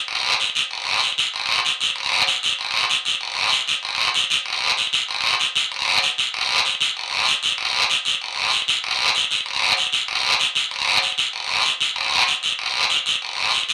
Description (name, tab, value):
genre	latin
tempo	192 BPM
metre	4/4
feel	straight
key	none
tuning	none
part	guiro	percussion	0.1-13.7 s	none	-19 LUFS	equal	none
room	wet small room ambience, RT60 0.5 s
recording	none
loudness	-19 LUFS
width	mono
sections	0.0-1.3 A section; 1.3-11.3 B section; 11.3-13.7 A section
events	none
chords	none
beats	| 0.09 0.40 0.71 1.02 | 1.34 1.65 1.96 2.27 | 2.59 2.90 3.21 3.52 | 3.84 4.15 4.46 4.78 | 5.09 5.40 5.71 6.03 | 6.34 6.65 6.96 7.28 | 7.59 7.90 8.21 8.52 | 8.84 9.15 9.46 9.77 | 10.09 10.40 10.71 11.02 | 11.34 11.65 11.96 12.27 | 12.59 12.90 13.21 13.53